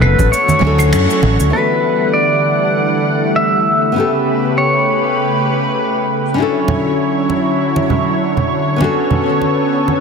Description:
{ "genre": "sunset chillout", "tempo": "99 BPM", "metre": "4/4", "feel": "swing 55% on 16ths", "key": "E dorian", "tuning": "A4 = 440 Hz", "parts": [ { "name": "pedal steel guitar", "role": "melody", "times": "0.0-6.0 s", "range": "B4 to E5", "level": "-16 LUFS", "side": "left 1 dB", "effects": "digital delay" }, { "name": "nylon-string guitar", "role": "accompaniment", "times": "0.0-10.0 s", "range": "E3 to A4", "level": "-19 LUFS", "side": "left 2 dB", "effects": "auto-pan, digital delay" }, { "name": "lush unison pad", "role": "sustained chords", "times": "0.0-10.0 s", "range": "C#3 to F#5", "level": "-16 LUFS", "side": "equal", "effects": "chorus" }, { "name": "fretless electric bass", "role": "bass", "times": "0.0-1.5 s", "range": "F#1 to F#2", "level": "-13 LUFS", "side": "equal", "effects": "analog chorus" }, { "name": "claves, cabasa and finger snaps", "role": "drums", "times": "0.0-1.5 s", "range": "none", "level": "-23 LUFS", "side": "right 2 dB", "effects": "soft clipping on snare" }, { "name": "congas", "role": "percussion", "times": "0.2-1.4, 6.7-10.0 s", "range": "none", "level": "-19 LUFS", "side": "right 3 dB", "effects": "none" } ], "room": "moderate plate reverb, RT60 2.6 s", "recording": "dense, heavily limited modern master", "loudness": "-12 LUFS", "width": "side -5 dB against mid", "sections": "0.0-1.5 A section; 1.5-10.0 B section", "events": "band accent 0.9-1.2", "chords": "0.3 Dmaj7; 1.5 Em11; 4.0 A9; 6.4 Dmaj9; 8.8 Bm9" }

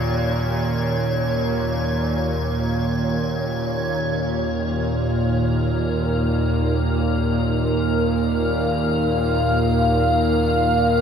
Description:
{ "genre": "dark ambient drone", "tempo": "free time", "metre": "none", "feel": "none", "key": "unclear", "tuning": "A4 = 440 Hz", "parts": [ { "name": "bowed-like drone", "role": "drone", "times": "0.0-11.0 s", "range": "Eb2 to Bb2", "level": "-20 LUFS", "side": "equal", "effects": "built-in reverb" }, { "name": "icy glass pad", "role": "texture", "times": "0.0-11.0 s", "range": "Bb4 to Db5", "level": "-27 LUFS", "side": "equal", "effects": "chorus, built-in reverb" }, { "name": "deep dark ambient pad", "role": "sustained chords", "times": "5.7-11.0 s", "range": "Eb4 to F5", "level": "-24 LUFS", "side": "equal", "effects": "chorus, built-in reverb" } ], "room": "wet huge ambient reverb, RT60 8.7 s", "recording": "none", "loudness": "-19 LUFS", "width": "side -7 dB against mid", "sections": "0.0-4.0 A section; 4.0-11.0 B section", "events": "none", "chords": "0.0 Eb5" }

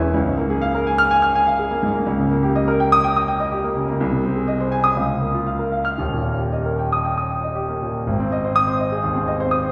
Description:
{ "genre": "classical, virtuoso piano study", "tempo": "111-126 BPM", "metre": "4/4", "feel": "rubato", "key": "Ab major", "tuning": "A4 = 439 Hz", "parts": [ { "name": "warm grand piano", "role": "solo", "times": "0.0-9.7 s", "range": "Eb1 to F6", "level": "-20 LUFS", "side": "equal", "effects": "none" } ], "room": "wet recital hall reverb, RT60 1.5 s", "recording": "recorded in a church or concert hall", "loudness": "-20 LUFS", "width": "mono", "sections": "0.0-8.1 A section; 8.1-9.7 B section", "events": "none", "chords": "0.1 Bbm7/Db; 2.1 Eb7/Db; 4.0 Ab/C; 5.0 Bbm/Db; 6.0 Eb; 8.1 Ab" }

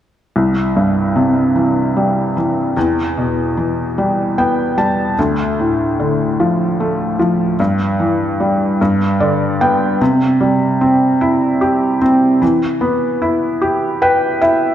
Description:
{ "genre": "pop", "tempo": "50 BPM (dotted quarters)", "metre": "6/8", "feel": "straight", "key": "C major", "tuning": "A4 = 440 Hz", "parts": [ { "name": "felt-muted upright piano", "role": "accompaniment", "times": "0.4-14.7 s", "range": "C2 to A5", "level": "-13 LUFS", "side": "equal", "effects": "none" } ], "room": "wet recital hall reverb, RT60 1.7 s", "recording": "dark, warm production", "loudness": "-13 LUFS", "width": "side -10 dB against mid", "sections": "0.3-10.0 A section; 10.0-14.7 B section", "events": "felt piano fill 4.0-5.2, 8.8-10.0, 13.6-14.7", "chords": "0.3 C; 2.8 Em; 5.2 Dm; 7.6 Em/G; 8.8 G; 10.0 C; 12.4 Em" }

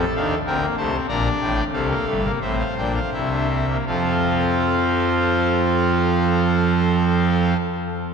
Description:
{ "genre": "classical, baroque-style 4-part fugue for pipe organ", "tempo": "78-100 BPM", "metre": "3/4", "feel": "straight", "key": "F major", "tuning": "A4 = 439 Hz", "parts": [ { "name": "pipe organ, trumpet", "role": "solo", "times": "0.0-7.6 s", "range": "G1 to Bb5", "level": "-18 LUFS", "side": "right 1 dB", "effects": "none" } ], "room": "wet cathedral reverb, RT60 5.1 s", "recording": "dark, warm production", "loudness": "-18 LUFS", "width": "side -6 dB against mid", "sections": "0.0-3.9 A section; 3.9-8.1 B section", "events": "slowing down 0.0-3.9", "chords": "0.0 F7; 1.1 Bb; 1.7 F; 3.1 C7; 3.9 F" }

